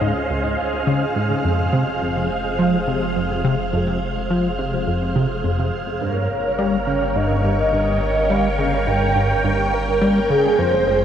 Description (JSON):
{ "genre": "ambient, sequencer-driven space music", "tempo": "105 BPM", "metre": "4/4", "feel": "straight", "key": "unclear", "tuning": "A4 = 443 Hz", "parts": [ { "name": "string machine, full ensemble", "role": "sustained chords", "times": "0.0-11.0 s", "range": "Db4 to G5", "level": "-24 LUFS", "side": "equal", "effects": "phaser, ensemble chorus" }, { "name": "tight sequenced synth", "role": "riff", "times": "0.0-11.0 s", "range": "Db2 to G3", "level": "-21 LUFS", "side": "equal", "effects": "chorus, tape echo" }, { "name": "round analog bass", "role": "bass", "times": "0.0-11.0 s", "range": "F1 to Db2", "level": "-29 LUFS", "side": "equal", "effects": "none" }, { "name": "wind-like tuned noise texture", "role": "texture", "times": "0.0-11.0 s", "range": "F5", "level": "-30 LUFS", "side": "right 4 dB", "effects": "built-in reverb" }, { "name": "mellow horn-like synth lead", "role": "melody", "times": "6.0-11.0 s", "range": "Ab4 to G5", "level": "-20 LUFS", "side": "right 1 dB", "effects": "ensemble chorus, vintage 12-bit sampler grit, tape echo" } ], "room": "wet cathedral reverb, RT60 5.5 s", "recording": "in a vast, echoing space", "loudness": "-17 LUFS", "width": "side -9 dB against mid", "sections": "0.0-11.0 A section", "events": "fade-in on analog synth bass 0.0-11.0", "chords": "0.0 Dbmaj7; 1.4 Fm; 6.0 Gdim" }